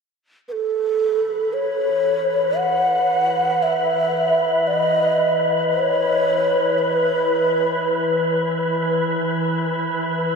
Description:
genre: ambient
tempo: free time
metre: none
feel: none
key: unclear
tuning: A4 = 440 Hz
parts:
  - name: breathy mellow long shakuhachi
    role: melody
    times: 0.5-8.4 s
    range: A4 to F#5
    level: -19 LUFS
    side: equal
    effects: tape echo
  - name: organ-like drone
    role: drone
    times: 1.9-10.4 s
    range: E3 to E4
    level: -28 LUFS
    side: equal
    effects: ensemble chorus, built-in reverb
  - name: wind-like tuned noise texture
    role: texture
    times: 1.3-10.4 s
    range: B4 to B5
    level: -23 LUFS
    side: equal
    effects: built-in reverb
room: wet cathedral reverb, RT60 6.6 s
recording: in a vast, echoing space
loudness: -17 LUFS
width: side -5 dB against mid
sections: 0.5-10.4 A section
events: fade-in on synth drone 0.5-10.4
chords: 0.5 E5

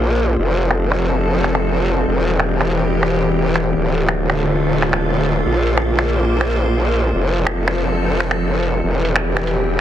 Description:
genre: heavy wobble dubstep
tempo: 142 BPM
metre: 4/4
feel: half-time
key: unclear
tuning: A4 = 439 Hz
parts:
  - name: evolving wavetable pad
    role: sustained chords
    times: 0.0-9.8 s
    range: D3 to C5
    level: -20 LUFS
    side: left 1 dB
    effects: chorus, built-in reverb
  - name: growl bass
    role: bass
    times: 0.0-9.8 s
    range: D1 to Bb1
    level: -18 LUFS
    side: equal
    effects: chorus, overdrive
  - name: dubstep drum kit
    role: drums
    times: 0.2-9.6 s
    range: finger snaps, hi-hat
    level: -22 LUFS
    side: right 1 dB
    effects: low-pass filter on hats, soft clipping on snare, low-pass filter on snare, low-pass filter on toms
room: light reverb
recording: dense, heavily limited modern master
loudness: -15 LUFS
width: side -11 dB against mid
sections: 0.0-9.8 A section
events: none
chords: 0.4 F; 2.1 C/E; 3.8 Dm; 5.5 Bbsus2; 7.1 F; 8.8 C/E

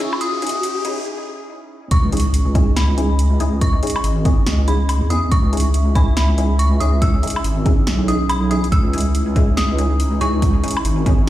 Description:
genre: deep dubstep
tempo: 141 BPM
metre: 4/4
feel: swing 62% on 16ths, half-time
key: C# minor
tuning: A4 = 440 Hz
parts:
  - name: dark detuned synth bell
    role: melody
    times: 0.0-11.3 s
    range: B5 to E6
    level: -26 LUFS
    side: equal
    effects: chorus, tremolo, dub echo
  - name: dark analog pad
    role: sustained chords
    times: 0.0-11.3 s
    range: C#4 to E5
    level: -28 LUFS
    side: equal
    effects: chorus
  - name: filtered dub chord stab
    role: stabs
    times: 0.0-11.2 s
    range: C#4 to G#4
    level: -26 LUFS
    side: left 2 dB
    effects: lush chorus, dub echo
  - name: deep house drum kit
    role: drums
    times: 0.0-11.2 s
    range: hi-hat, snare drum, woodblock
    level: -26 LUFS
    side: equal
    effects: overdrive, high-pass filter on hats, small room ambience, high-pass filter on snare, high-pass filter on perc
  - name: riser and impact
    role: sound effects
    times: 0.0-3.6 s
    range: none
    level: -26 LUFS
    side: equal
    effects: none
  - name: deep soft wobble bass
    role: bass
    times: 1.9-11.3 s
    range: G#1 to E2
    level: -17 LUFS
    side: equal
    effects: chorus
  - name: electronic kick drum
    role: drums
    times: 1.9-11.2 s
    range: none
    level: -16 LUFS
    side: equal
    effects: overdrive, small room ambience
room: little or no reverb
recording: played on a big sound system in a bare room, large studio reverb, high-pass filter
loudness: -15 LUFS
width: side -14 dB against mid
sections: 0.0-1.9 A section; 1.9-11.3 B section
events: build-up 0.0-1.9; riser 0.0-1.1; filter sweep on analog synth pad 0.0-1.9; break 1.1-1.9; drop 1.9-11.3; impact 1.9-3.6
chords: 0.0 C#madd9

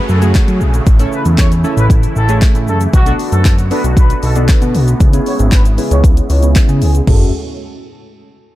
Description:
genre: dance-pop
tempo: 116 BPM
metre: 4/4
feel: straight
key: F# minor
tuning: A4 = 441 Hz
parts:
  - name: warm horn section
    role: melody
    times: 0.0-7.3 s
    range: F#4 to C#5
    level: -23 LUFS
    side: equal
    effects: sidechain pumping, low-pass filter, dub echo
  - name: chorused retro synth keys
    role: accompaniment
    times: 0.0-7.3 s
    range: A3 to A4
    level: -20 LUFS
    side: right 1 dB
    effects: sidechain pumping, low-pass filter
  - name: filtered supersaw swell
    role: sustained chords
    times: 0.0-7.3 s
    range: A2 to G#4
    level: -23 LUFS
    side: right 1 dB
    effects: sidechain pumping, low-pass filter
  - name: downlifter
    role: sound effects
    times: 0.0-2.9 s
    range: none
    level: -33 LUFS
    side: equal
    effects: none
  - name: fat analog bass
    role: bass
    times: 0.1-7.3 s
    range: F#1 to F#3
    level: -13 LUFS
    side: equal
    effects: sidechain pumping
  - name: deep house drum kit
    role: drums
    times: 0.1-7.2 s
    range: crash cymbal, handclaps, hi-hat, kick drum, shaker, toms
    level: -12 LUFS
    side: equal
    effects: none
room: little or no reverb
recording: dark, warm production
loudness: -9 LUFS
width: side -15 dB against mid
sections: 0.0-7.1 A section; 7.1-8.6 B section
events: filter sweep 0.0-7.1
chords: 0.0 F#madd9; 0.9 A; 2.9 Bm7; 5.0 C#m7; 7.1 F#madd9

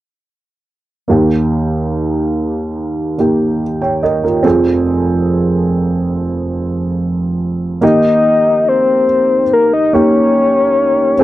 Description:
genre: pop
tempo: 71 BPM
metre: 4/4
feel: straight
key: Eb mixolydian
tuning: A4 = 440 Hz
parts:
  - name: dark upright piano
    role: accompaniment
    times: 1.1-11.2 s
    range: F1 to G5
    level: -13 LUFS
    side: right 1 dB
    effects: none
  - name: soft octave-layered synth lead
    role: melody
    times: 7.8-11.2 s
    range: Bb4 to Eb5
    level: -11 LUFS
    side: left 2 dB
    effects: chorus, slapback echo
room: light reverb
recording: dry, close 1970s-style studio recording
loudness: -11 LUFS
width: side -15 dB against mid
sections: 1.1-7.8 A section; 7.8-11.2 B section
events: none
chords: 1.1 Eb; 4.5 Fm; 7.8 Eb

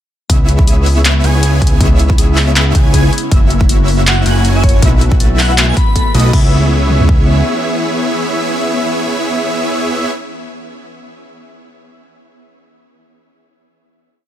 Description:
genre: future bass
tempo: 159 BPM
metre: 4/4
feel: swing 55% on 16ths, half-time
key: C# minor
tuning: A4 = 440 Hz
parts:
  - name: shimmering ambient pad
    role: sustained chords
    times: 1.4-10.1 s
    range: C#3 to G#4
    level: -24 LUFS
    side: equal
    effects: chorus, built-in reverb, sidechain pumping
  - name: Celtic harp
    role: arpeggios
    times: 0.3-9.4 s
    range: A#3 to B4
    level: -24 LUFS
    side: left 9 dB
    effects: sidechain pumping, ping-pong delay
  - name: airy dreamy lead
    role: arpeggios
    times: 0.3-10.1 s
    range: D#5 to G#5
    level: -25 LUFS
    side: equal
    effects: chorus, sidechain pumping
  - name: supersaw chords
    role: riff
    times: 0.3-10.1 s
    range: A3 to G#5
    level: -18 LUFS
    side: right 1 dB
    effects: sidechain pumping, ping-pong delay
  - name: fat analog bass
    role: bass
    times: 0.3-7.4 s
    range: F#1 to C#2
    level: -12 LUFS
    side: equal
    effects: sidechain pumping
  - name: big-room dance drum kit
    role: drums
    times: 0.3-7.2 s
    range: kick drum, toms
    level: -11 LUFS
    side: equal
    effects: none
  - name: big-room dance drum kit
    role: drums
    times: 0.3-6.4 s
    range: crash cymbal, handclaps, hi-hat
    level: -17 LUFS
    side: left 1 dB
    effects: none
  - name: airy dreamy lead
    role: melody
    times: 4.1-6.3 s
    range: C#5 to B5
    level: -22 LUFS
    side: left 1 dB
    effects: chorus, phaser, sidechain pumping, tape echo
room: digital ambience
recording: none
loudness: -9 LUFS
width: side -11 dB against mid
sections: 0.3-6.3 drop; 6.3-9.4 final chord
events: drop 0.3-6.3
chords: 0.3 C#m7; 3.1 F#7; 4.8 B7sus4; 6.3 C#m7

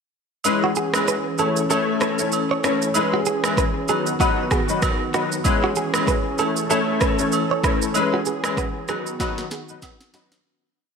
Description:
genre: afrobeats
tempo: 96 BPM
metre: 4/4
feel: swing 58% on 16ths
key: E major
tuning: A4 = 439 Hz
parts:
  - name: clear grand piano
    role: accompaniment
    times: 0.4-10.4 s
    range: F#3 to C#5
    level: -23 LUFS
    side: left 5 dB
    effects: ensemble chorus
  - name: afro-pop drum kit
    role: drums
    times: 0.4-10.4 s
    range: kick drum, rim click, shaker, snare drum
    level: -25 LUFS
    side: equal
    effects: gated reverb
  - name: agogo bells and woodblock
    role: percussion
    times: 0.4-10.0 s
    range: none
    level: -29 LUFS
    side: right 8 dB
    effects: none
  - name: warm analog pad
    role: sustained chords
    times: 0.5-10.4 s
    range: D#3 to A4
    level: -26 LUFS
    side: right 1 dB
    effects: chorus
  - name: direct-recorded clean electric guitar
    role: riff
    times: 0.6-10.2 s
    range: F#4 to C#5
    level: -26 LUFS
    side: right 5 dB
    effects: lush chorus, ping-pong delay
room: moderate plate reverb, RT60 2.2 s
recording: bright 1980s-style digital production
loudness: -19 LUFS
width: side -5 dB against mid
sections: 0.4-10.4 verse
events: fade-out 7.9-10.4; drum fill 9.2-10.4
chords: 0.4 E6; 1.4 A; 2.9 E6; 3.9 B; 5.4 E6; 6.4 A; 7.9 E6; 8.9 B

